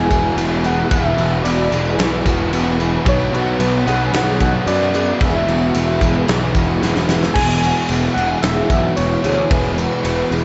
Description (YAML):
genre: rock, shoegaze and dream pop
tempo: 112 BPM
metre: 4/4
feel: straight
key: E mixolydian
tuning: A4 = 442 Hz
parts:
  - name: soft struck synth lead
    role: melody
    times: 0.0-10.4 s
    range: B4 to G#5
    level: -24 LUFS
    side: equal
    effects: chorus, tremolo, analog delay
  - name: picked twelve-string acoustic guitar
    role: arpeggios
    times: 0.0-10.4 s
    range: F#4 to G#4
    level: -30 LUFS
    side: equal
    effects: ensemble chorus, analog delay
  - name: overdriven electric guitar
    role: riff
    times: 0.0-10.4 s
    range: B2 to B4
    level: -27 LUFS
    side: equal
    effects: reverse reverb
  - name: raw garage guitar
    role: riff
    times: 0.0-10.4 s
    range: E2 to B3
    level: -27 LUFS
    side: equal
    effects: overdrive
  - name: thick fuzz guitar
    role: riff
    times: 0.0-10.4 s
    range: E2 to B3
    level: -26 LUFS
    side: equal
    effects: distortion, ensemble chorus
  - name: fuzz picked electric bass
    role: bass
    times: 0.0-10.4 s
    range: E1 to F#2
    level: -23 LUFS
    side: equal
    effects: overdrive
  - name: big rock drum kit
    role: drums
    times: 0.1-10.2 s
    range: crash cymbal, kick drum, snare drum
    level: -24 LUFS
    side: equal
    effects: none
  - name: tambourine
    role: percussion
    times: 0.1-10.4 s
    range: none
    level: -40 LUFS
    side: equal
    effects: none
room: light reverb, small room ambience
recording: nothing above 7.9 kHz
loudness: -17 LUFS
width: mono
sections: 0.0-7.4 A section; 7.4-10.4 B section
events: drum fill 6.8-7.4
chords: 0.0 Eadd9; 3.1 Bm; 5.2 Eadd9; 7.4 E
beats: 0.37 | 0.91 1.45 1.98 2.52 | 3.06 3.60 4.13 4.67 | 5.21 5.75 6.28 6.82 | 7.36 7.90 8.43 8.97 | 9.51 10.05